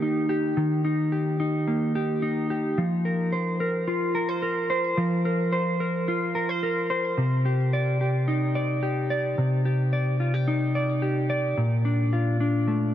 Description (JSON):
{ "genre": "dream pop", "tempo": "109 BPM", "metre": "4/4", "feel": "straight", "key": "unclear", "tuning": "A4 = 436 Hz", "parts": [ { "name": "mellow electric guitar", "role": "solo", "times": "0.0-12.9 s", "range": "Bb2 to D5", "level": "-23 LUFS", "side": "equal", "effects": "lush chorus, ping-pong delay" } ], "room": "moderate huge ambient reverb, RT60 6.5 s", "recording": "none", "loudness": "-23 LUFS", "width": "side -11 dB against mid", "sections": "0.0-2.8 A section; 2.8-12.9 A section", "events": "none", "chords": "0.0 Eb; 2.8 Fsus4; 7.2 Cmadd9; 11.6 Bbmaj7", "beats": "0.02 | 0.57 1.12 1.67 2.22 | 2.77 3.32 3.87 4.42 | 4.97 5.52 6.07 6.62 | 7.17 7.72 8.27 8.82 | 9.38 9.93 10.48 11.03 | 11.58 12.13 12.68" }